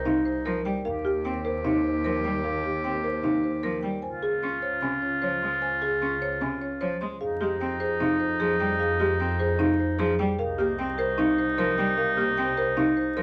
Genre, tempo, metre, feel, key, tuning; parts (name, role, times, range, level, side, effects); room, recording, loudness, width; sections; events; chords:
classical, minimalist pattern music; 151 BPM; 4/4; straight; A4 = 440 Hz
marimba with medium hard mallets; melody; 0.0-13.2 s; G4 to C6; -34 LUFS; equal
warm oboe; second line; 0.0-13.2 s; Eb4 to G4; -32 LUFS; equal
folk marimba with medium mallets; arpeggios; 0.0-13.2 s; Db4 to Db5; -30 LUFS; equal
rich symphonic double bass section; bass; 0.0-13.2 s; C2 to F2; -35 LUFS; equal
rich cello; accompaniment; 0.1-13.2 s; C3 to Db4; -35 LUFS; equal
moderate studio reverb, RT60 0.7 s; vinyl crackle; -26 LUFS; mono
0.0-13.2 A section
0.0 Cm7; 0.9 Ebadd9; 4.0 Db; 7.2 Fm7; 10.4 Cm7